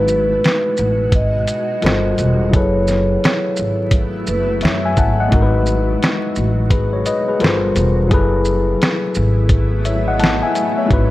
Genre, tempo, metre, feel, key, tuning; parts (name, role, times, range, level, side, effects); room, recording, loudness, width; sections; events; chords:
lo-fi hip hop; 86 BPM; 4/4; swing 64% on 16ths; F# dorian; A4 = 440 Hz
vibraphone with soft mallets; melody; 0.0-4.5 s; B4 to D#5; -20 LUFS; right 1 dB
tine electric piano; accompaniment; 0.0-11.1 s; F#3 to A5; -19 LUFS; left 3 dB
granular cloud pad; sustained chords; 0.0-11.1 s; B2 to F#4; -26 LUFS; equal; built-in reverb
upright bass; bass; 0.0-11.1 s; E1 to F#2; -18 LUFS; equal
lo-fi sampler-style drum kit; drums; 0.1-11.1 s; hi-hat, kick drum, shaker, snare drum; -17 LUFS; equal
light reverb, digital ambience; vinyl crackle; -14 LUFS; side -16 dB against mid
0.0-11.1 A section
0.0 G#m7; 1.8 Gm11; 2.5 F#m11; 5.3 G#m7; 7.4 Gm11; 8.1 F#m11